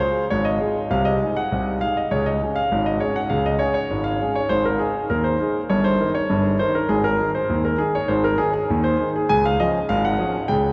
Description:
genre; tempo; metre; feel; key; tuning
ragtime piano; 100 BPM; 2/4; straight; Db major; A4 = 441 Hz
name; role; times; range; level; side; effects
clear concert grand piano; solo; 0.0-10.7 s; G1 to Ab5; -21 LUFS; equal; none
room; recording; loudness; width
wet cathedral reverb, RT60 4.9 s; in a vast, echoing space, nothing above 7.7 kHz; -21 LUFS; mono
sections
0.0-10.7 A section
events
none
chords
0.0 Db; 0.9 Ab/C; 2.1 Db5; 4.5 Ab5; 5.7 Eb/G; 6.9 Ab5; 9.3 Db

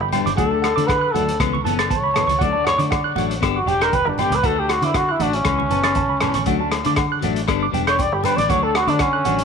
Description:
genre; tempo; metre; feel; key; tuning
highlife guitar band; 118 BPM; 4/4; swing 53% on 16ths; D major; A4 = 440 Hz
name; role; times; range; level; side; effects
tine electric piano; arpeggios; 0.0-9.3 s; F#5 to A6; -24 LUFS; right 12 dB; medium stereo tremolo, tape echo
fingered electric bass; bass; 0.0-9.4 s; E1 to D3; -26 LUFS; equal; none
clean electric guitar; accompaniment; 0.1-9.4 s; E3 to G4; -26 LUFS; left 14 dB; lush chorus
vintage drum kit; drums; 0.1-9.4 s; hi-hat, kick drum, rim click; -25 LUFS; equal; none
agogo bells; percussion; 0.1-9.2 s; none; -29 LUFS; left 16 dB; none
congas; percussion; 0.1-9.4 s; none; -31 LUFS; right 9 dB; none
breathy trumpet; melody; 0.4-9.4 s; C#4 to D5; -21 LUFS; equal; tape echo
room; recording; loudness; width
light reverb, studio reverb; 1960s-style stereo with parts hard left and right; -17 LUFS; side -6 dB against mid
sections
0.0-9.4 A section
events
trumpet solo 0.0-9.4; drum fill 3.9-4.4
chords
0.4 D; 1.4 Aadd9; 2.4 D; 3.4 G; 4.4 D; 5.5 Aadd9; 6.5 D; 7.5 G; 8.5 D

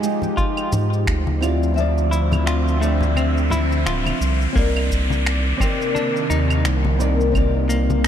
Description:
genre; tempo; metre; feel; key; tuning
sunset chillout; 86 BPM; 4/4; swing 58% on 16ths; C minor; A4 = 440 Hz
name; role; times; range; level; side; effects
nylon-string guitar; accompaniment; 0.0-8.1 s; Eb3 to E5; -24 LUFS; moving between left 7 dB and right 2 dB; auto-pan, ping-pong delay
lush unison pad; sustained chords; 0.0-8.1 s; C3 to E5; -26 LUFS; right 1 dB; chorus
electronic shaker, claves and finger snaps; drums; 0.0-8.1 s; none; -29 LUFS; right 1 dB; none
riser and downlifter; sound effects; 0.5-8.1 s; none; -29 LUFS; equal; none
congas; percussion; 0.2-8.0 s; none; -28 LUFS; left 3 dB; none
clean electric guitar; arpeggios; 0.4-8.0 s; A3 to F4; -29 LUFS; left 2 dB; tremolo, ping-pong delay
electronic kick drum; drums; 0.4-7.5 s; none; -22 LUFS; equal; none
round analog bass; bass; 0.7-8.1 s; D1 to Ab2; -20 LUFS; equal; tube saturation
room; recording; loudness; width
light reverb; dark, warm production; -17 LUFS; side -9 dB against mid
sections
0.0-4.6 A section; 4.6-8.1 B section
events
riser 0.5-4.6; kick drops out 1.8-4.6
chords
0.0 Fm9; 1.4 Dm9; 4.6 Cm9

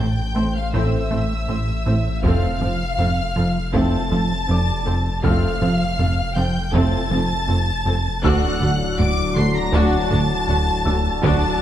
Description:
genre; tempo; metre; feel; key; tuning
cinematic, hybrid orchestral and electronic film score; 80 BPM; 4/4; straight; unclear; A4 = 441 Hz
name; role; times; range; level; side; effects
rich studio violin section; melody; 0.0-11.6 s; E6 to D7; -30 LUFS; left 2 dB; none
clear symphonic violin section; second line; 0.0-11.6 s; E5 to D6; -27 LUFS; left 1 dB; none
clear symphonic viola section; accompaniment; 0.0-11.6 s; C4 to C5; -28 LUFS; equal; none
rubbery square bass; riff; 0.0-11.5 s; D2 to A3; -22 LUFS; right 1 dB; none
rich symphonic cello section; bass; 0.0-11.3 s; D2 to A2; -27 LUFS; right 1 dB; none
rich symphonic double bass section; bass; 0.0-11.3 s; F1 to D2; -26 LUFS; right 2 dB; none
saturated sub bass; bass; 0.0-11.6 s; D1 to A1; -28 LUFS; left 1 dB; none
felt-muted upright piano; texture; 0.0-11.6 s; C5 to F6; -35 LUFS; left 4 dB; digital delay
bright trombone section; sustained chords; 0.7-11.6 s; A2 to A3; -30 LUFS; equal; none
warm French horn section; sustained chords; 0.7-11.6 s; C4 to A4; -30 LUFS; left 4 dB; none
taiko ensemble; drums; 0.7-11.6 s; none; -27 LUFS; equal; none
room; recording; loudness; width
moderate concert hall reverb, RT60 2.3 s; dark, warm production; -17 LUFS; side -11 dB against mid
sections
0.0-11.6 A section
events
none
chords
0.0 Am; 2.2 F; 8.2 D

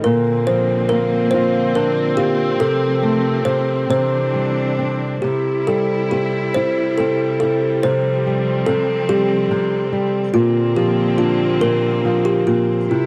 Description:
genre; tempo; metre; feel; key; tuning
children's music, lullaby; 47 BPM (dotted quarters); 6/8; rubato; unclear; A4 = 443 Hz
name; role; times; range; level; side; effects
kalimba; melody; 0.0-13.1 s; E4 to C5; -21 LUFS; equal; none
flamenco guitar; accompaniment; 0.0-13.1 s; Bb2 to F4; -23 LUFS; equal; none
rich studio string section; sustained chords; 0.0-13.1 s; C3 to E4; -25 LUFS; equal; none
room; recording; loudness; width
light reverb; dry, close 1970s-style studio recording; -18 LUFS; mono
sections
0.0-13.1 A section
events
none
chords
0.1 Bbadd9; 2.6 F/C; 3.9 Cadd9; 5.2 C; 7.8 Fsus2/C; 10.3 Bbadd9

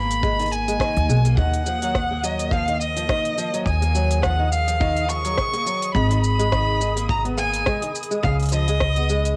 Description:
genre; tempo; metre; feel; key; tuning
folktronica; 105 BPM; 4/4; swing 56% on 16ths; Eb minor; A4 = 441 Hz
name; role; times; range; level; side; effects
rich violin; melody; 0.0-9.4 s; Eb5 to Db6; -26 LUFS; equal; cassette tape, plate reverb
warbly tape-like pad; sustained chords; 0.0-9.4 s; Eb3 to Cb6; -37 LUFS; equal; chorus, built-in reverb, phaser, cassette tape
fingerpicked steel-string acoustic guitar; arpeggios; 0.0-9.4 s; Db3 to Cb4; -30 LUFS; equal; cassette tape, plate reverb
upright bass; bass; 0.0-9.4 s; Ab1 to Eb2; -24 LUFS; equal; none
organic electronic drum kit; drums; 0.1-9.4 s; hi-hat, rim click, shaker; -31 LUFS; equal; overdrive
kick drum; drums; 0.2-8.9 s; none; -30 LUFS; equal; none
flickering grainy texture; texture; 1.8-9.4 s; Eb6; -41 LUFS; equal; built-in reverb, cassette tape, plate reverb
room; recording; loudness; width
light reverb; home recording on cassette; -21 LUFS; mono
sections
0.0-9.4 A section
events
none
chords
0.0 Abmadd9; 1.4 Ebmadd9; 5.9 Abmadd9; 8.2 Db7

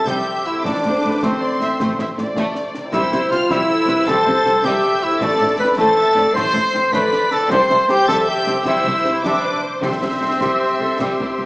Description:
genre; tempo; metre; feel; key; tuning
cinematic, heroic adventure film score; 105 BPM (dotted quarters); 12/8; straight; C major; A4 = 440 Hz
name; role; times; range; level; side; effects
warm symphonic violin section; melody; 0.0-11.5 s; C6 to C7; -27 LUFS; left 1 dB; none
dark cor anglais; second line; 0.0-11.5 s; C4 to C5; -23 LUFS; equal; none
mellow large flute ensemble; second line; 0.0-11.5 s; C5 to C6; -24 LUFS; left 1 dB; none
warm symphonic violin section; second line; 0.0-11.5 s; G3 to C5; -28 LUFS; equal; none
clear symphonic viola section; accompaniment; 0.0-11.5 s; G4 to E5; -25 LUFS; equal; none
mellow French horn section; sustained chords; 0.0-11.5 s; C4 to C5; -22 LUFS; left 1 dB; none
concert harp; arpeggios; 0.0-11.4 s; A2 to A4; -34 LUFS; left 1 dB; none
warm trumpet; stabs; 0.0-11.5 s; C4 to C5; -21 LUFS; equal; none
clear symphonic double bass section; bass; 0.1-11.5 s; A1 to C2; -30 LUFS; equal; none
rich symphonic cello section; bass; 0.1-11.5 s; A2 to C3; -26 LUFS; equal; none
concert snare drum, concert bass drum and clash cymbals; drums; 0.1-11.2 s; none; -29 LUFS; equal; none
warm clarinet; second line; 10.4-11.5 s; G4 to A4; -24 LUFS; equal; none
room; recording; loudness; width
wet scoring stage reverb, RT60 1.4 s; small speaker sound; -15 LUFS; side -23 dB against mid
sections
0.0-11.5 A section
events
none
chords
0.0 C; 0.7 Am; 2.9 C; 5.2 Am; 7.5 C

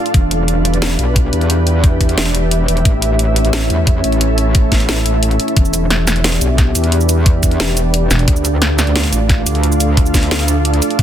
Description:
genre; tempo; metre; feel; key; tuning
dark technical drum and bass; 177 BPM; 4/4; straight; E phrygian; A4 = 437 Hz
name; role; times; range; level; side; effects
dark analog pad; sustained chords; 0.0-11.0 s; A3 to F5; -22 LUFS; right 1 dB; chorus, sidechain pumping
ethereal airy pad; texture; 0.0-11.0 s; C#4 to F5; -20 LUFS; right 1 dB; ensemble chorus, built-in reverb, sidechain pumping
metallic wobble bass; bass; 0.1-11.0 s; E1 to E2; -15 LUFS; equal; chorus, tube saturation, sidechain pumping
drum and bass drum kit; drums; 0.1-11.0 s; hi-hat, shaker, snare drum; -18 LUFS; equal; none
electronic kick drum; drums; 0.1-11.0 s; none; -13 LUFS; equal; none
growling FM bass; bass; 8.1-8.3 s; E1; -13 LUFS; equal; none
room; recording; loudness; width
light reverb, digital ambience; dense, heavily limited modern master; -12 LUFS; side -10 dB against mid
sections
0.0-11.0 A section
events
break 4.9-5.6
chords
0.1 Em7; 2.9 A; 5.6 Em7; 8.3 Dm

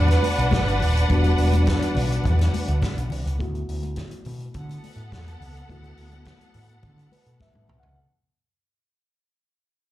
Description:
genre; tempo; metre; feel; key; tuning
disco; 105 BPM; 4/4; straight; unclear; A4 = 440 Hz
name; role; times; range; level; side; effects
warm studio string section; second line; 0.0-7.9 s; B3 to F#5; -27 LUFS; right 1 dB; slapback echo
mellow reed electric piano; accompaniment; 0.0-8.0 s; G3 to F#5; -30 LUFS; left 2 dB; fast tremolo, slapback echo
picked electric bass; bass; 0.0-8.0 s; D#1 to D3; -22 LUFS; equal; none
vintage drum kit; drums; 0.1-8.0 s; hi-hat, kick drum, snare drum, toms; -28 LUFS; equal; none
congas; percussion; 0.1-7.8 s; none; -34 LUFS; left 4 dB; none
room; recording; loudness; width
little or no reverb; live gig heard through the venue's PA, club reverb; -19 LUFS; side -14 dB against mid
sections
0.0-8.0 A section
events
fade-out 0.0-8.0; reed electric piano fill 6.8-8.0; drum fill 7.4-8.0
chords
0.0 Em9; 3.4 D69

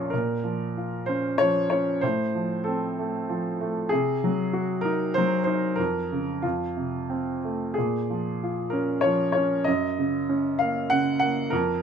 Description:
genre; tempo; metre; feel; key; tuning
classical, lyrical solo piano; 95 BPM; 3/4; rubato; Bb minor; A4 = 442 Hz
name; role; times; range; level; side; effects
clear baby grand piano; solo; 0.0-11.8 s; Bb1 to Gb5; -23 LUFS; equal; none
room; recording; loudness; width
light reverb; none; -23 LUFS; side -7 dB against mid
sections
0.1-11.8 A section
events
none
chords
0.1 Bbm; 2.0 F/A; 3.9 Cdim; 5.8 Bbm/F; 6.4 F; 7.8 Bbm7; 9.7 Gb

